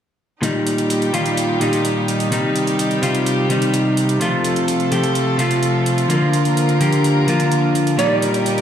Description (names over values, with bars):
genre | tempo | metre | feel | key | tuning
EDM, festival progressive house | 127 BPM | 4/4 | straight | unclear | A4 = 440 Hz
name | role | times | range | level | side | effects
clean electric guitar | accompaniment | 0.4-8.6 s | Bb2 to G4 | -17 LUFS | left 1 dB | digital delay
rich chamber string section | sustained chords | 0.4-8.6 s | Bb2 to Bb4 | -21 LUFS | right 1 dB | none
electronic hi-hat | drums | 0.4-8.6 s | none | -28 LUFS | right 3 dB | none
plucky unison lead | melody | 8.0-8.2 s | D5 | -19 LUFS | right 5 dB | ping-pong delay
room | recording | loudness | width
moderate huge ambient reverb, RT60 4.7 s | played on a big sound system in a bare room, large studio reverb | -15 LUFS | side -9 dB against mid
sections
0.4-8.6 A section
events
none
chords
0.4 Eb; 2.3 Cm; 4.2 F; 6.1 Bb; 8.0 Eb